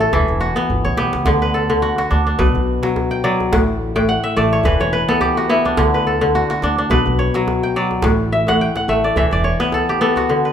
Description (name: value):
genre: west african traditional, West African string and xylophone music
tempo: 106 BPM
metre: 4/4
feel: swing 56% on 16ths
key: unclear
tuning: A4 = 441 Hz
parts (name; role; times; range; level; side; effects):
- kora; arpeggios; 0.0-10.5 s; A2 to G5; -16 LUFS; left 1 dB; none
- upright bass; bass; 0.0-9.5 s; E1 to D2; -22 LUFS; right 1 dB; none
- djembe; percussion; 0.0-10.3 s; none; -24 LUFS; right 2 dB; none
room: moderate recital hall reverb, RT60 1.8 s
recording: minimal, uncompressed stereo recording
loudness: -14 LUFS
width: side -8 dB against mid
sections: 0.0-10.3 A section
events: drum fill 0.7-1.3; kora fill 3.9-5.8, 8.3-10.3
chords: 0.1 Em; 1.3 D; 2.4 Bm; 3.5 Asus4; 4.6 E5; 5.8 D; 6.9 Bm; 8.0 Em11/A; 9.2 E5